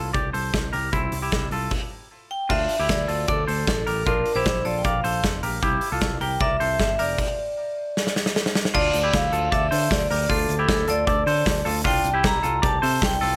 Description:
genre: jangly indie pop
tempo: 154 BPM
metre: 4/4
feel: straight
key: unclear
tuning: A4 = 440 Hz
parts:
  - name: semi-hollow electric guitar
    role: arpeggios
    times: 0.0-13.4 s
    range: C4 to D5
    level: -28 LUFS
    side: equal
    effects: none
  - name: picked electric bass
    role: bass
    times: 0.0-13.4 s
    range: F1 to D3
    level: -31 LUFS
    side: equal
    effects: none
  - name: big rock drum kit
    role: drums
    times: 0.1-13.3 s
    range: crash cymbal, hi-hat, kick drum, snare drum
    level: -27 LUFS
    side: equal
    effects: none
  - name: vibraphone with hard mallets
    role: melody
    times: 2.3-13.4 s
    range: A4 to Bb5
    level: -27 LUFS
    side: equal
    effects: tape echo
room: light reverb, studio ambience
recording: none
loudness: -23 LUFS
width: mono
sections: 0.0-2.5 A section; 2.5-8.7 B section; 8.7-13.4 C section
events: stop 1.7-2.5; drum fill 8.0-8.7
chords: 0.0 C; 2.5 Dm; 4.1 Bbmaj7; 7.2 N.C.; 8.7 Dm; 11.8 Csus2

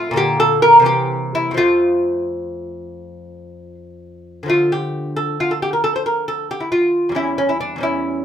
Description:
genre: classical, baroque-style dance for lute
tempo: 81-93 BPM (dotted quarters)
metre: 12/8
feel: rubato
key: F major, D minor from 4.5 s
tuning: A4 = 441 Hz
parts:
  - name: lute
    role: solo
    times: 0.0-8.2 s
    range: E2 to C5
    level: -15 LUFS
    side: equal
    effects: none
room: moderate studio reverb, RT60 0.7 s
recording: band playing live in one room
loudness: -15 LUFS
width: side -9 dB against mid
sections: 0.0-4.5 A section; 4.5-8.2 A section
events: none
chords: 0.2 Bbmaj7; 0.9 C7; 1.6 F; 4.5 Dm; 7.2 C#dim/E

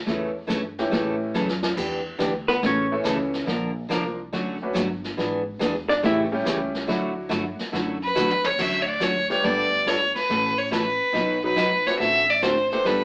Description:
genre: country, western swing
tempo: 141 BPM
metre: 4/4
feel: swing 67% on 8ths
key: D major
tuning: A4 = 440 Hz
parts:
  - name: upright bass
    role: bass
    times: 0.0-13.0 s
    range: E1 to A2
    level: -31 LUFS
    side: equal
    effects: none
  - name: bright upright piano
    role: accompaniment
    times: 0.1-13.0 s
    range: E3 to B4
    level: -28 LUFS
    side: equal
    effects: none
  - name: picked steel-string acoustic guitar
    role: accompaniment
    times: 0.1-13.0 s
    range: B2 to Bb4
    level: -26 LUFS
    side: equal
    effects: none
  - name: jazz brush drum kit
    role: drums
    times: 0.1-13.0 s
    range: brushed snare drum, crash cymbal, hi-hat, kick drum, snare drum, toms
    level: -30 LUFS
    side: equal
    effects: none
  - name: vintage hollow-body jazz guitar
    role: second line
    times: 2.5-2.9, 5.9-6.2 s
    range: B3 to E5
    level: -21 LUFS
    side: equal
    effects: none
  - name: bright fiddle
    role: melody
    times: 8.0-13.0 s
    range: B4 to E5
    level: -21 LUFS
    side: equal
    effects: none
room: wet studio reverb, RT60 0.5 s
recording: band playing live in one room, AM radio sound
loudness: -21 LUFS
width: side -33 dB against mid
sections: 0.0-8.6 A section; 8.6-13.0 B section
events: hollow-body jazz guitar solo 0.0-8.6; drum fill 1.4-1.8, 8.2-8.6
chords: 0.1 A; 1.8 Em7; 2.6 A; 3.5 Bb; 4.3 Dmaj7; 5.2 E7; 6.0 A7; 6.9 Dadd9; 8.6 Dmaj7; 9.4 Gadd9; 10.3 Aadd9; 11.2 B; 12.0 D7/A

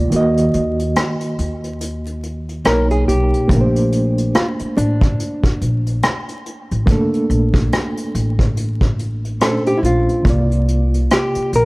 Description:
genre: lo-fi hip hop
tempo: 71 BPM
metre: 4/4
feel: swing 59% on 16ths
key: Bb major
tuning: A4 = 440 Hz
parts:
  - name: reed electric piano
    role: accompaniment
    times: 0.0-11.7 s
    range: Bb2 to Eb5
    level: -20 LUFS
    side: right 1 dB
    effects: fast tremolo, low-pass filter
  - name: upright bass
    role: bass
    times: 0.0-11.7 s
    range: A1 to Eb2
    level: -19 LUFS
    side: equal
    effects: none
  - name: vintage brush drum kit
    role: drums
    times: 0.1-11.7 s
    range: hi-hat, kick drum, rim click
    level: -19 LUFS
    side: equal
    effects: none
  - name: hollow-body jazz guitar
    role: melody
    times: 2.7-11.7 s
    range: D4 to A#4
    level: -20 LUFS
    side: equal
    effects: low-pass filter
room: light reverb, small room reverb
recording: vinyl crackle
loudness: -15 LUFS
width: side -23 dB against mid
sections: 0.0-11.7 A section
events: break 0.0-3.5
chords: 0.1 Ebm; 2.6 Bmaj9; 3.5 Bbmaj9; 10.3 C9sus4

